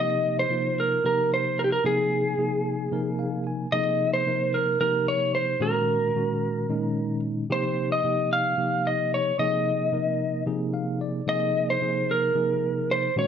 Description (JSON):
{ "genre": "jazz", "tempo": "223 BPM (eighths)", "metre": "7/8", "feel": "straight", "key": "unclear", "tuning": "A4 = 442 Hz", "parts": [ { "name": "lightly driven lead guitar", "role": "melody", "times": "0.0-13.3 s", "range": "G4 to F5", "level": "-24 LUFS", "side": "equal", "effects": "slapback echo" }, { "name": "tine electric piano", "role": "accompaniment", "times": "0.0-13.3 s", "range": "Bb2 to Ab5", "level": "-27 LUFS", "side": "equal", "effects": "medium stereo tremolo" } ], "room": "wet large studio reverb, RT60 0.9 s", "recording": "dark, warm production", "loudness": "-23 LUFS", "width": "side -8 dB against mid", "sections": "0.0-13.3 A section", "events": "tine electric piano fill 2.9-3.7, 10.5-11.3", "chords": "0.0 F9sus4; 1.8 Bb9sus4; 3.7 Ebsus24; 5.6 Ab9sus4; 7.5 F9sus4; 9.4 Bb9sus4" }